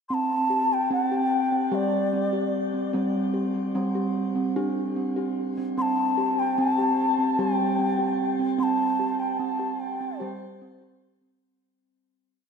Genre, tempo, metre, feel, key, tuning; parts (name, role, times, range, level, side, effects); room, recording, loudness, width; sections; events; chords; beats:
world meditative, meditative tuned percussion; 148 BPM (eighths); 7/8; straight; A4 = 440 Hz
mellow bansuri; melody; 0.1-11.1 s; C5 to C6; -26 LUFS; left 1 dB; shimmer reverb, ping-pong delay
steel tongue drum; arpeggios; 0.1-11.4 s; G3 to G4; -25 LUFS; right 1 dB; shimmer reverb, ping-pong delay
wet lush hall reverb, RT60 2.6 s; dreamy mix soaked in reverb; -23 LUFS; side -6 dB against mid
0.1-11.4 A section
fade-out 8.6-11.4
0.1 C5; 2.9 G5; 5.8 C5
| 0.10 0.51 0.91 1.32 1.72 2.13 2.53 | 2.94 3.34 3.75 4.15 4.56 4.96 5.37 | 5.77 6.17 6.58 6.98 7.39 7.79 8.20 | 8.60 9.00 9.40 9.81 10.21 10.61 11.02